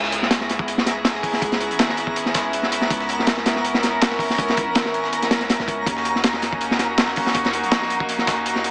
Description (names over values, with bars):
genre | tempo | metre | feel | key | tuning
drum and bass, jungle | 162 BPM | 4/4 | swing 53% on 16ths | C# dorian | A4 = 442 Hz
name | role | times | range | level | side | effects
warm studio string section | sustained chords | 0.0-8.7 s | A#3 to A#4 | -26 LUFS | equal | none
long sustained 808-style bass | bass | 0.0-8.7 s | G#1 to D#2 | -38 LUFS | equal | tube saturation
breakbeat sampler-style drum kit | drums | 0.0-8.7 s | hi-hat, snare drum | -32 LUFS | equal | none
twinkling granular texture | texture | 0.4-8.7 s | A#5 | -31 LUFS | equal | built-in reverb
crunchy breakbeat drum kit | drums | 0.1-8.7 s | hi-hat, kick drum, snare drum | -24 LUFS | equal | none
room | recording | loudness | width
moderate echo chamber reverb, RT60 1.4 s | small speaker sound | -21 LUFS | mono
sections
0.0-8.7 A section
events
none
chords
0.0 C#m7; 5.9 D#m7